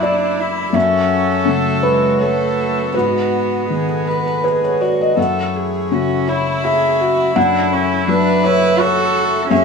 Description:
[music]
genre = neoclassical piano and strings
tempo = 82 BPM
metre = 3/4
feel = rubato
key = F# minor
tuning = A4 = 440 Hz
[part]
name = clear cello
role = second line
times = 0.0-9.6 s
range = G#3 to F#4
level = -20 LUFS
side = right 2 dB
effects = none
[part]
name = felt-muted upright piano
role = accompaniment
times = 0.0-9.6 s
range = F#2 to F#5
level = -16 LUFS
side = left 2 dB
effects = none
[part]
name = warm viola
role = accompaniment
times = 0.0-9.6 s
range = E4 to B4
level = -21 LUFS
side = right 1 dB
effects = none
[part]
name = pedal harmonium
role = sustained chords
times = 0.0-9.6 s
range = F#3 to E5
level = -26 LUFS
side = left 1 dB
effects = none
[sound]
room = moderate studio reverb, RT60 0.8 s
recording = band playing live in one room, studio reverb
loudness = -14 LUFS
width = side -5 dB against mid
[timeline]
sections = 0.0-9.6 A section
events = none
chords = 0.0 Dadd9/F#; 0.7 F#m7; 2.9 G#m7; 5.2 F#m7; 7.4 Bm11/F#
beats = 0.03 | 0.75 1.47 2.20 | 2.94 3.69 4.43 | 5.17 5.91 6.63 | 7.36 8.08 8.80 | 9.51

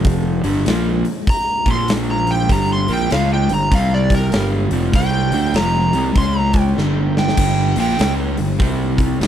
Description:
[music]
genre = blues rock power trio and southern rock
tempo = 98 BPM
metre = 4/4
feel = swing 63% on 8ths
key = G minor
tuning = A4 = 438 Hz
[part]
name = overdriven semi-hollow guitar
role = riff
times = 0.0-9.3 s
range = F2 to D4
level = -20 LUFS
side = equal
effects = none
[part]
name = fuzz fingered electric bass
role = bass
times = 0.0-9.3 s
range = F1 to D2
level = -20 LUFS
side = equal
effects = overdrive
[part]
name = huge arena drum kit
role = drums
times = 0.0-9.3 s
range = crash cymbal, hi-hat, kick drum, snare drum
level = -20 LUFS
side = equal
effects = none
[part]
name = overdriven slide guitar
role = melody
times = 1.3-8.1 s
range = Bb4 to C6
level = -21 LUFS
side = right 1 dB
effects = none
[sound]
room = little or no reverb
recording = none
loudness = -14 LUFS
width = side -10 dB against mid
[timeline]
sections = 0.0-9.3 A section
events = electric slide guitar solo 0.0-9.3; drum fill 6.8-7.4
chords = 0.4 Gm; 1.6 Bb5; 2.5 Gm; 3.7 C5; 4.3 Gm; 6.2 C#5; 6.8 Gm; 8.6 C5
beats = | 0.05 0.66 1.27 1.88 | 2.50 3.10 3.72 4.33 | 4.94 5.55 6.16 6.77 | 7.38 7.99 8.60 9.21

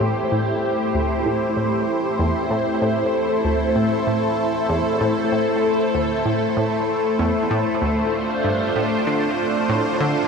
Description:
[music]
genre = ambient, sequencer-driven space music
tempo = 96 BPM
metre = 4/4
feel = straight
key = unclear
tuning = A4 = 440 Hz
[part]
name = lush unison pad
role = sustained chords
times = 0.0-10.3 s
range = A3 to C5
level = -19 LUFS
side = equal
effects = chorus, phaser, shimmer reverb
[part]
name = analog pluck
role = riff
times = 0.0-10.1 s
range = D2 to D3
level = -24 LUFS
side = equal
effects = chorus, tape echo
[sound]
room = wet huge ambient reverb, RT60 7.1 s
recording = none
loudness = -18 LUFS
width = side -5 dB against mid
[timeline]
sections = 0.0-10.3 A section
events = none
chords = 0.0 Am7; 7.8 Dm7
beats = | 0.32 0.94 1.57 2.19 | 2.82 3.44 4.07 4.69 | 5.32 5.94 6.57 7.19 | 7.82 8.44 9.07 9.69

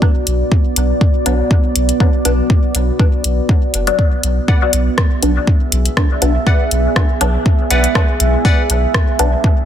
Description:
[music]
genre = dub techno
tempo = 121 BPM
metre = 4/4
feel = swing 54% on 16ths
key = B dorian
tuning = A4 = 440 Hz
[part]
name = deep dark ambient pad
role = sustained chords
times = 0.0-9.7 s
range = B3 to E5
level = -20 LUFS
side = right 2 dB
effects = chorus, built-in reverb, sidechain pumping
[part]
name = electronic kick drum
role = drums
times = 0.0-9.5 s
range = none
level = -13 LUFS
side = equal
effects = none
[part]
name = soft dub sub bass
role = bass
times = 0.3-9.4 s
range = F#1 to B1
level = -16 LUFS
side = equal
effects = sidechain pumping
[part]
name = deep house drum kit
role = drums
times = 0.3-9.3 s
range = hi-hat, rim click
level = -19 LUFS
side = left 1 dB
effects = soft clipping on snare
[part]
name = filtered dub chord stab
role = stabs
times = 1.3-9.3 s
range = F#3 to D4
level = -21 LUFS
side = left 3 dB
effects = phaser, vintage 12-bit sampler grit, sidechain pumping, dub echo
[part]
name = wavetable chord stab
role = riff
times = 4.5-8.6 s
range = B4 to F#5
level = -22 LUFS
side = left 2 dB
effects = phaser, sidechain pumping, dub echo
[sound]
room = light reverb, digital ambience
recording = dense, heavily limited modern master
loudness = -12 LUFS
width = side -10 dB against mid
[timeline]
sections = 0.0-9.7 A section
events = none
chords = 0.0 Bm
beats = 0.02 | 0.52 1.01 1.51 2.00 | 2.50 3.00 3.49 3.99 | 4.48 4.98 5.47 5.97 | 6.47 6.96 7.46 7.95 | 8.45 8.95 9.44

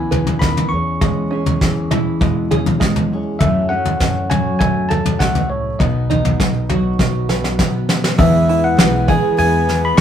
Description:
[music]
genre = indie folk with a building arrangement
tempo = 100 BPM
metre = 4/4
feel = straight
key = E major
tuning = A4 = 440 Hz
[part]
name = bell-like tine electric piano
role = melody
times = 0.0-10.0 s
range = C#5 to C#6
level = -21 LUFS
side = left 2 dB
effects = none
[part]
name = fingerpicked steel-string acoustic guitar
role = accompaniment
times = 0.0-8.2 s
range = E2 to G#4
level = -22 LUFS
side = left 1 dB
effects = none
[part]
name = open-back banjo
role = arpeggios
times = 0.0-10.0 s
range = G#3 to B4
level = -23 LUFS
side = right 4 dB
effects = none
[part]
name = upright bass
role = bass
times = 0.0-10.0 s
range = B1 to E3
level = -22 LUFS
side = left 1 dB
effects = none
[part]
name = soft brush drum kit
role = drums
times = 0.1-10.0 s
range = hi-hat, kick drum, snare drum, toms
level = -17 LUFS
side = equal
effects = none
[part]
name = dark upright piano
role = accompaniment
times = 8.2-10.0 s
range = E2 to E5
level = -28 LUFS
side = left 1 dB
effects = none
[part]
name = picked twelve-string acoustic guitar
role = accompaniment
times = 8.2-10.0 s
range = E3 to G#4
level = -25 LUFS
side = left 5 dB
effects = none
[part]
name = dark chamber string section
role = sustained chords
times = 8.2-10.0 s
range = E3 to B3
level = -26 LUFS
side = right 2 dB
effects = none
[sound]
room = wet studio reverb, RT60 0.6 s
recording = rough rehearsal-room recording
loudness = -14 LUFS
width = side -9 dB against mid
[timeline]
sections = 0.0-8.2 A section; 8.2-10.0 B section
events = drum fill 7.0-8.2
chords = 0.0 C#m7; 0.7 E6; 3.4 F#m; 5.8 B; 8.2 E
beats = 0.42 | 1.02 1.62 2.22 2.81 | 3.41 4.01 4.61 5.21 | 5.81 6.41 7.00 7.60 | 8.19 8.79 9.38 9.98

